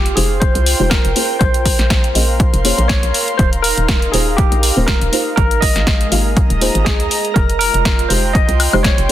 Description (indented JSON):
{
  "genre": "deep house",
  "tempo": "121 BPM",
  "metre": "4/4",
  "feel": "swing 55% on 16ths",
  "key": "unclear",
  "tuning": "A4 = 441 Hz",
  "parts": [
    { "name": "barky tine electric piano", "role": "melody", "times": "0.0-9.1 s", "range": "G4 to Eb5", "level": "-20 LUFS", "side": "right 1 dB", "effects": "medium stereo tremolo, tape echo" },
    { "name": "hollow knocking FM bass", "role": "bass", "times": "0.0-9.1 s", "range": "Eb1 to Eb2", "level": "-18 LUFS", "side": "equal", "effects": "sidechain pumping" },
    { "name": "airy breathy pad", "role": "texture", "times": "0.0-9.1 s", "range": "Ab3 to C6", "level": "-23 LUFS", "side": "right 1 dB", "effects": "chorus, sidechain pumping" },
    { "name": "punchy analog drum machine", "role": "drums", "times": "0.1-9.1 s", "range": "hi-hat, snare drum, woodblock", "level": "-19 LUFS", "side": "left 1 dB", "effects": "overdrive" },
    { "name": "deep mellow chord stab", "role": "stabs", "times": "0.2-9.1 s", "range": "Ab3 to F5", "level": "-22 LUFS", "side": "equal", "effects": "chorus, sidechain pumping" },
    { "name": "electronic kick drum", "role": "drums", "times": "0.4-9.0 s", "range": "none", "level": "-15 LUFS", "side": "equal", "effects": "overdrive" }
  ],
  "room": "digital ambience",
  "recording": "dense, heavily limited modern master",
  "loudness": "-12 LUFS",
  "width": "side -12 dB against mid",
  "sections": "0.0-9.1 A section",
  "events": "filter sweep on synth stab 0.0-9.1",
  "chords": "0.0 Fm9; 1.2 Bbm9; 3.4 Eb13; 5.4 Abmaj13; 7.4 Fm9"
}